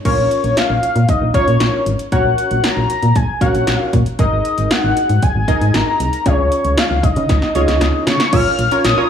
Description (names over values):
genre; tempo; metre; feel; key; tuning
synth-pop; 116 BPM; 4/4; straight; Bb minor; A4 = 442 Hz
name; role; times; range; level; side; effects
octave-doubled lead; melody; 0.1-9.1 s; Db5 to F6; -18 LUFS; left 3 dB; chorus, slapback echo
funky polysynth comp; accompaniment; 0.1-9.1 s; Db4 to Eb5; -21 LUFS; right 2 dB; chorus
solid FM bass; bass; 0.1-8.9 s; Ab1 to Db3; -17 LUFS; equal; none
deep house drum kit; drums; 0.1-9.0 s; crash cymbal, hi-hat, kick drum, snare drum; -18 LUFS; equal; overdrive
room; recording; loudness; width
light reverb, digital ambience; small room ambience; -13 LUFS; side -8 dB against mid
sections
0.1-8.3 A section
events
drum fill 7.3-8.3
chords
0.1 Bbm; 2.1 Gb/Bb; 4.2 Absus2; 6.3 Dbadd9; 8.3 Bbm